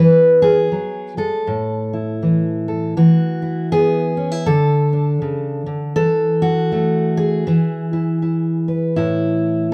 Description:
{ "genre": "folk, solo fingerstyle acoustic guitar", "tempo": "80 BPM", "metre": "4/4", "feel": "swing 60% on 8ths", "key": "A major", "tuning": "A4 = 439 Hz", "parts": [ { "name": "fingerpicked steel-string acoustic guitar", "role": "solo", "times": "0.0-9.7 s", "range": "A2 to B4", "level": "-18 LUFS", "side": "equal", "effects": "none" } ], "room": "moderate studio reverb, RT60 0.7 s", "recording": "band playing live in one room", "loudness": "-18 LUFS", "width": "mono", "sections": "0.0-9.7 A section", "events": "none", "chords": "0.0 E; 1.5 A5; 3.0 Esus2; 4.5 Aadd11; 6.0 Esus4; 7.5 E; 9.0 A5" }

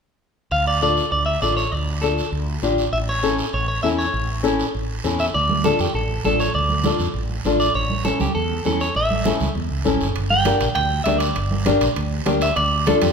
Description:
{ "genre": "latin, cumbia", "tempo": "199 BPM", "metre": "4/4", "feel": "straight", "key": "D harmonic minor", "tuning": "A4 = 439 Hz", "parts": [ { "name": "clean electric guitar", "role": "melody", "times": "0.5-13.1 s", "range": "G4 to G5", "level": "-22 LUFS", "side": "right 1 dB", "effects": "spring reverb" }, { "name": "mellow fretless electric bass", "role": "bass", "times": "0.5-13.1 s", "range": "G1 to F2", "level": "-24 LUFS", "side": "equal", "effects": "none" }, { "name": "guiro", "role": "percussion", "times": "0.5-13.1 s", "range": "none", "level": "-32 LUFS", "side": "right 6 dB", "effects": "none" }, { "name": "flamenco guitar", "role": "accompaniment", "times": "0.8-13.1 s", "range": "C#4 to Bb4", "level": "-23 LUFS", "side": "left 4 dB", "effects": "none" }, { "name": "congas", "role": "percussion", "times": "5.3-13.1 s", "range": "none", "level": "-27 LUFS", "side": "right 4 dB", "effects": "none" }, { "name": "timbales", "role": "percussion", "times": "10.2-13.1 s", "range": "none", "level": "-31 LUFS", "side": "right 5 dB", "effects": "none" } ], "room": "wet large studio reverb, RT60 1.3 s", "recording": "minimal, uncompressed stereo recording", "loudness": "-18 LUFS", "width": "side -6 dB against mid", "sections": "0.5-5.3 A section; 5.3-13.1 B section", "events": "none", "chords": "0.5 Dm; 2.9 A; 5.3 Dm; 7.7 A; 10.2 Gm; 12.6 Dm" }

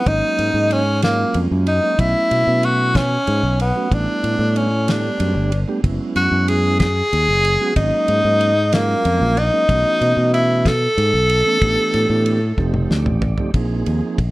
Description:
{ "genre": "electric jazz fusion", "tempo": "62 BPM (dotted quarters)", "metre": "6/8", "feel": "straight", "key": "unclear", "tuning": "A4 = 441 Hz", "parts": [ { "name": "bright tenor saxophone", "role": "melody", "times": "0.0-12.9 s", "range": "A#3 to A4", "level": "-18 LUFS", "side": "equal", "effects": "plate reverb" }, { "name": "mellow tonewheel organ", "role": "accompaniment", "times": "0.0-14.2 s", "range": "E3 to D5", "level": "-24 LUFS", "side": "right 3 dB", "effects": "slow rotary speaker" }, { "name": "fingered electric bass", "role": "bass", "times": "0.1-14.3 s", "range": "F1 to B2", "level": "-19 LUFS", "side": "equal", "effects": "none" }, { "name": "damped 70s drum kit", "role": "drums", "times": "0.1-14.3 s", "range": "kick drum, ride cymbal, snare drum, toms", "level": "-23 LUFS", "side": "equal", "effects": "none" } ], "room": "moderate large studio reverb, RT60 0.8 s, small room ambience", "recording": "none", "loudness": "-15 LUFS", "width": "side -19 dB against mid", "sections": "0.0-13.5 A section", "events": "drum fill 12.6-13.5; tonewheel organ fill 12.6-13.5", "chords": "0.1 G#9sus4; 2.0 B9sus4; 3.9 A9sus4; 5.8 F#9sus4; 7.8 G#9sus4; 9.7 B9sus4; 11.6 A9sus4; 12.6 F9; 13.5 Bb9sus4" }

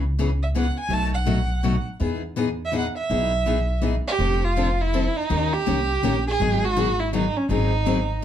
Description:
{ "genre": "acoustic string swing (jazz manouche)", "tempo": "164 BPM", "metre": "3/4", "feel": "swing 63% on 8ths", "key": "E major", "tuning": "A4 = 440 Hz", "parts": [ { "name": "picked steel-string acoustic guitar", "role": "accompaniment", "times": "0.0-8.2 s", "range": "B2 to A#4", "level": "-25 LUFS", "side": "left 4 dB", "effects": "none" }, { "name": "upright bass", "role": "bass", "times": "0.0-8.2 s", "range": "F1 to E2", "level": "-25 LUFS", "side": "equal", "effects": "none" }, { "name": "warm violin", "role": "melody", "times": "0.4-8.2 s", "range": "C#4 to A5", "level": "-24 LUFS", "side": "right 4 dB", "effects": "none" } ], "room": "wet small room reverb, RT60 0.6 s", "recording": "heard from further back in the room", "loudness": "-20 LUFS", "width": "side -10 dB against mid", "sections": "0.0-4.2 A section; 4.2-8.2 B section", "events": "none", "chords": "0.0 C#m7; 0.9 B7; 2.0 Emaj7; 4.2 F6; 5.3 D#7; 6.4 G#m7; 7.5 G#7" }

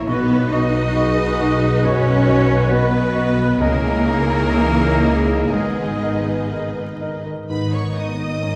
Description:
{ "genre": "cinematic, emotional film score for orchestra", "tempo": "59-69 BPM", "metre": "4/4", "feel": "rubato", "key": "G# minor", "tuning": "A4 = 440 Hz", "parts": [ { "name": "warm symphonic violin section", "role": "melody", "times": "0.0-8.6 s", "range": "G#4 to D#6", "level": "-32 LUFS", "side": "equal", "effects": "none" }, { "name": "rich symphonic violin section", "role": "second line", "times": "0.0-8.6 s", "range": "B4 to D#5", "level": "-34 LUFS", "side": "equal", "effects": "none" }, { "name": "felt-muted upright piano", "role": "accompaniment", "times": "0.0-8.6 s", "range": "B1 to C#5", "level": "-30 LUFS", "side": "equal", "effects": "none" }, { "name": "rich symphonic viola section", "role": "accompaniment", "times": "0.0-8.6 s", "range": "A#3 to B4", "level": "-29 LUFS", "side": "equal", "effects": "none" }, { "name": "dark French horn section", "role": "sustained chords", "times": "0.0-7.0 s", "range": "E3 to D#5", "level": "-29 LUFS", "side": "equal", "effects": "none" }, { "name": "concert harp", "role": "arpeggios", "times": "0.0-8.6 s", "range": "G#2 to D#5", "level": "-29 LUFS", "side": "equal", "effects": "none" }, { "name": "clear symphonic double bass section", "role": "bass", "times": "0.0-8.6 s", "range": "G#1 to C#2", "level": "-24 LUFS", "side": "equal", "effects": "none" }, { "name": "rich symphonic cello section", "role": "bass", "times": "0.0-8.6 s", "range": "G#2 to D#4", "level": "-24 LUFS", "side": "equal", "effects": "none" }, { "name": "clear oboe", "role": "second line", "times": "0.1-6.5 s", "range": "G#4 to D#5", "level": "-28 LUFS", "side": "equal", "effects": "none" }, { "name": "small flute group", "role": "second line", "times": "0.1-7.1 s", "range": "D#5", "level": "-34 LUFS", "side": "equal", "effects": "none" }, { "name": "warm clarinet", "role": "second line", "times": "0.1-7.2 s", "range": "F#4 to A#4", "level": "-35 LUFS", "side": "equal", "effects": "none" } ], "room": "wet scoring stage reverb, RT60 1.6 s", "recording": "heard from further back in the room, vinyl crackle", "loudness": "-18 LUFS", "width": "mono", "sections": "0.0-7.5 A section; 7.5-8.6 A section", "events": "none", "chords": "0.1 B; 3.6 C#madd9; 5.5 G#madd9" }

